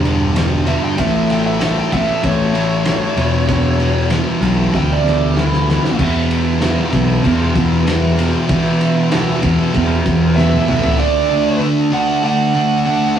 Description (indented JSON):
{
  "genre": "quiet-loud alternative rock",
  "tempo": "96 BPM",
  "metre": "4/4",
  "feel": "straight",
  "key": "unclear",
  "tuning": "A4 = 441 Hz",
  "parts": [
    { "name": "thick fuzz guitar", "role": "riff", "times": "0.0-13.2 s", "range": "E2 to D4", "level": "-17 LUFS", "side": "equal", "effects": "distortion" },
    { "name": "fuzz picked electric bass", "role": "bass", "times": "0.0-10.9 s", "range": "E1 to E3", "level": "-17 LUFS", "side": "equal", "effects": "overdrive" },
    { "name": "loose indie drum kit", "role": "drums", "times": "0.1-11.0 s", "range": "crash cymbal, kick drum, ride cymbal, snare drum, toms", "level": "-20 LUFS", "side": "equal", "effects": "none" },
    { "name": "bluesy overdriven lead guitar", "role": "melody", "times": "0.7-6.0, 10.4-13.1 s", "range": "E4 to G5", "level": "-19 LUFS", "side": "right 3 dB", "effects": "distortion" }
  ],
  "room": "moderate studio reverb, RT60 0.6 s",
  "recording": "rough rehearsal-room recording, warm saturation, small room ambience",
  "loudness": "-13 LUFS",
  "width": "side -9 dB against mid",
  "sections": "0.0-6.0 A section; 6.0-11.0 B section; 11.0-13.2 C section",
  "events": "lead electric guitar solo 0.0-6.0; drum fill 4.7-6.0, 10.4-11.0",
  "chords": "0.0 G5; 1.0 A; 3.2 E5; 11.0 D",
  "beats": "0.35 | 0.98 1.60 2.23 2.86 | 3.48 4.11 4.74 5.36 | 5.99 6.62 7.24 7.87 | 8.49 9.12 9.74 10.37 | 10.99 11.62 12.24 12.87"
}